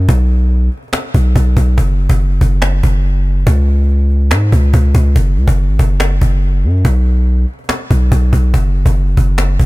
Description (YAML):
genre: hip hop, trap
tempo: 142 BPM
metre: 4/4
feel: half-time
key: unclear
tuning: A4 = 441 Hz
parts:
  - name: long sustained 808-style bass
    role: bass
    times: 0.0-9.7 s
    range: F#1 to G#2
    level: -11 LUFS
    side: equal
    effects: none
  - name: cajon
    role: drums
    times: 0.0-9.7 s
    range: none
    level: -18 LUFS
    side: equal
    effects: none
room: studio reverb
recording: none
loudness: -10 LUFS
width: side -21 dB against mid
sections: 0.0-9.7 A section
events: none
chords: none